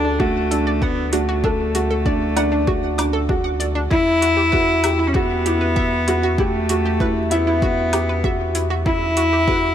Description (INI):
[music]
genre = piano and strings electronica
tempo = 97 BPM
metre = 4/4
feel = straight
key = E minor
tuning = A4 = 440 Hz
[part]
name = rich cello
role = melody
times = 0.0-9.7 s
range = A3 to E4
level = -21 LUFS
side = left 1 dB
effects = none
[part]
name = analog pluck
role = arpeggios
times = 0.0-9.6 s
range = D4 to D6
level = -27 LUFS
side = right 2 dB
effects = chorus, sidechain pumping, digital delay
[part]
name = dark upright piano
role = riff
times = 0.0-9.7 s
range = D4 to A4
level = -21 LUFS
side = equal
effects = digital delay
[part]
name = warm sub bass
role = bass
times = 0.0-9.7 s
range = D2 to E2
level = -24 LUFS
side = equal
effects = sidechain pumping
[part]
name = electronic kick drum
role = drums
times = 0.2-9.6 s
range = none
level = -23 LUFS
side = equal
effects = overdrive, small room ambience
[part]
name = electronic hi-hat and woodblock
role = drums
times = 0.5-9.3 s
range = none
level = -26 LUFS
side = left 2 dB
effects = overdrive, small room ambience
[sound]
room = light reverb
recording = none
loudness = -16 LUFS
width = side -10 dB against mid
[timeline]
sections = 0.0-9.7 A section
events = none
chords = 0.0 D; 3.9 Emadd9